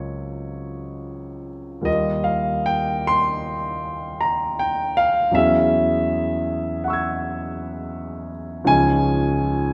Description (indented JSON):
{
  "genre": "classical, impressionist solo piano",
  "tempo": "47-55 BPM (dotted quarters)",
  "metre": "9/8",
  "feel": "rubato",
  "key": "unclear",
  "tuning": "A4 = 440 Hz",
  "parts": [
    { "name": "warm concert grand piano", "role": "solo", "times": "0.0-9.7 s", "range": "Db2 to G#6", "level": "-22 LUFS", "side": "equal", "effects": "none" }
  ],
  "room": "wet concert hall reverb, RT60 2.1 s",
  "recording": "none",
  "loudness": "-21 LUFS",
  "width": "mono",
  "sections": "0.0-9.7 A section",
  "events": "none",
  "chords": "0.0 Gbmaj7#11/Db; 1.9 Ebadd9; 5.4 E69; 8.7 Dbadd9"
}